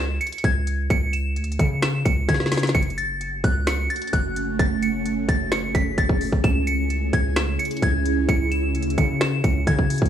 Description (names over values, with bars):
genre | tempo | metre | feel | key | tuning
hip hop, trap | 130 BPM | 4/4 | half-time | unclear | A4 = 440 Hz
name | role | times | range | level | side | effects
delicate synth tine bell | melody | 0.0-10.1 s | F#6 to E7 | -27 LUFS | equal | chorus, tape echo
long sustained 808-style bass | bass | 0.0-10.1 s | F#1 to C#3 | -25 LUFS | equal | none
trap drum kit | drums | 0.2-10.1 s | finger snaps, hi-hat, kick drum, snare drum | -23 LUFS | equal | none
ethereal airy pad | sustained chords | 3.6-10.1 s | C#3 to G#4 | -26 LUFS | right 2 dB | ensemble chorus, built-in reverb, phaser
room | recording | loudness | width
digital ambience | studio reverb | -20 LUFS | side -10 dB against mid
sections
0.0-10.1 A section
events
drum fill 2.3-2.7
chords
0.0 C#m; 2.7 F#m; 6.4 C#m